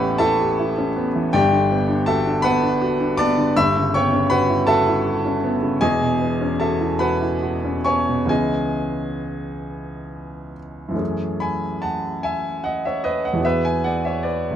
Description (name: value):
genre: classical, impressionist solo piano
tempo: 43-55 BPM (dotted quarters)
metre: 6/8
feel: rubato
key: F# dorian from 5.8 s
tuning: A4 = 442 Hz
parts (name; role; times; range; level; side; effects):
- clear baby grand piano; solo; 0.0-14.6 s; E1 to E6; -18 LUFS; equal; none
room: light reverb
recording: dark, warm production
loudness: -18 LUFS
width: side -10 dB against mid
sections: 0.0-11.0 A section; 11.0-14.6 B section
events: none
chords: 0.0 A9; 1.3 Gmaj7; 3.6 A69/G; 5.8 E69; 8.3 C#m7; 11.0 F#m11; 13.4 E9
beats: 0.20 | 1.33 2.44 | 3.56 4.68 | 5.81 7.00 | 8.29 9.67 | 11.00 12.23 | 13.44